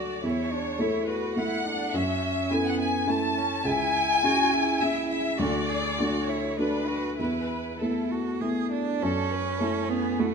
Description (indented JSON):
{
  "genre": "neoclassical piano and strings",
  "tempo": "97-107 BPM",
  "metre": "3/4",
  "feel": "rubato",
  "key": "F# minor",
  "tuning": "A4 = 440 Hz",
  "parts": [
    { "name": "rich chamber violin section", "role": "melody", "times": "0.0-10.3 s", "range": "F#4 to A5", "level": "-28 LUFS", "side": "left 2 dB", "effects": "none" },
    { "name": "rich cello", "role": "second line", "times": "0.0-10.3 s", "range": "A3 to G#4", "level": "-32 LUFS", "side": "right 6 dB", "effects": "none" },
    { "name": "felt-muted upright piano", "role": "accompaniment", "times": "0.0-10.3 s", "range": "C#2 to A4", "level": "-28 LUFS", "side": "equal", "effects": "none" }
  ],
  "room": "moderate scoring stage reverb, RT60 1.9 s",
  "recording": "minimal, uncompressed stereo recording",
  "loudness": "-24 LUFS",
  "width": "side -5 dB against mid",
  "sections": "0.0-9.0 A section; 9.0-10.3 B section",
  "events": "none",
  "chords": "0.2 Esus4; 1.9 F#m7; 3.7 C#m; 5.4 D; 7.2 Esus4; 9.0 F#m7",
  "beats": "| 0.24 0.80 1.37 | 1.95 2.52 3.09 | 3.66 4.24 4.82 | 5.39 5.98 6.58 | 7.19 7.80 8.41 | 9.02 9.61 10.19"
}